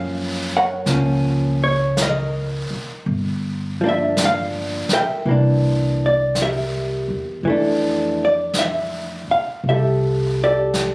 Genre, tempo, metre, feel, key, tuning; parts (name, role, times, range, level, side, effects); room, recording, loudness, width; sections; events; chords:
jazz ballad; 55 BPM; 4/4; swing 67% on 8ths; F major; A4 = 440 Hz
vintage hollow-body jazz guitar; accompaniment; 0.0-10.9 s; E3 to G5; -19 LUFS; equal
upright bass; bass; 0.0-10.9 s; G1 to Gb2; -22 LUFS; equal
jazz brush drum kit; drums; 0.9-10.9 s; brushed snare drum, hi-hat, snare drum; -27 LUFS; equal
light reverb; recorded on a phone in the room, club reverb; -17 LUFS; side -26 dB against mid
0.0-10.9 A section
0.0 Gbmaj7; 3.1 Gm7; 5.3 C9; 7.4 Fmaj13